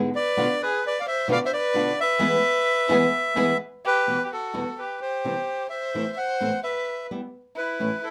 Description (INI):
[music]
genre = tango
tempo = 129 BPM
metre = 4/4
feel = rubato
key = E minor from 4.1 s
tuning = A4 = 442 Hz
[part]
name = flamenco guitar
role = accompaniment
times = 0.0-7.9 s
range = E2 to F#4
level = -28 LUFS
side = equal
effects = none
[part]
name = dark chamber string section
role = stabs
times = 0.0-3.5 s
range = G#3 to B4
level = -33 LUFS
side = equal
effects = none
[part]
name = bandoneon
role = melody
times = 0.2-8.1 s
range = A4 to F#5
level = -27 LUFS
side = equal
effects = none
[part]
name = warm violin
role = second line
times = 0.2-8.1 s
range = E4 to D5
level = -30 LUFS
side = equal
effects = none
[sound]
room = light reverb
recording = none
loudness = -24 LUFS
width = mono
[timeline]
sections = 0.0-4.1 A section; 4.1-8.1 B section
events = band accent 2.2-4.1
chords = 0.4 Bdim; 2.2 E; 4.1 Emadd9; 5.0 C; 5.9 Am; 6.9 Em/G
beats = | 0.37 0.83 1.29 1.75 | 2.20 2.67 3.13 3.60 | 4.07 4.54 5.01 5.47 | 5.94 6.40 6.87 7.34 | 7.80